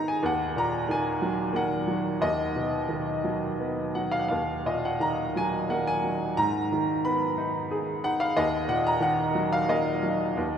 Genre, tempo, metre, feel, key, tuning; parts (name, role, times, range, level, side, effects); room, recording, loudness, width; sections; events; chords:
classical, lyrical solo piano; 89 BPM; 3/4; rubato; Eb minor; A4 = 441 Hz
bright upright piano; solo; 0.0-10.6 s; Eb2 to Cb6; -24 LUFS; equal
wet cathedral reverb, RT60 6.0 s; recorded in a church or concert hall; -24 LUFS; side -8 dB against mid
0.0-10.6 A section
0.2 Ebm; 2.2 B/D#; 4.3 Ebm; 6.4 Abmadd9; 8.4 Ebm